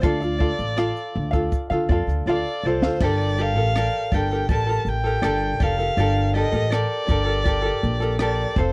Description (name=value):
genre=acoustic pop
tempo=81 BPM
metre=4/4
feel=straight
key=G minor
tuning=A4 = 440 Hz
part: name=dark violin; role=melody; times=0.0-8.7 s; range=C5 to A5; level=-29 LUFS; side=equal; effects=none
part: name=tenor ukulele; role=accompaniment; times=0.0-8.7 s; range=C4 to F5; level=-27 LUFS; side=equal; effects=none
part: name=upright bass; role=bass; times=0.0-8.7 s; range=F1 to D3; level=-26 LUFS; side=equal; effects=none
part: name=compact cocktail drum kit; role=drums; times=0.0-8.7 s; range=crash cymbal, kick drum, rim click, shaker, snare drum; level=-26 LUFS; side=equal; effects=none
room=little or no reverb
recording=dry, close 1970s-style studio recording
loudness=-22 LUFS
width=mono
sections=0.0-3.0 A section; 3.0-8.7 B section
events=drum fill 2.3-3.0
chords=0.0 Dm; 3.0 Gmadd9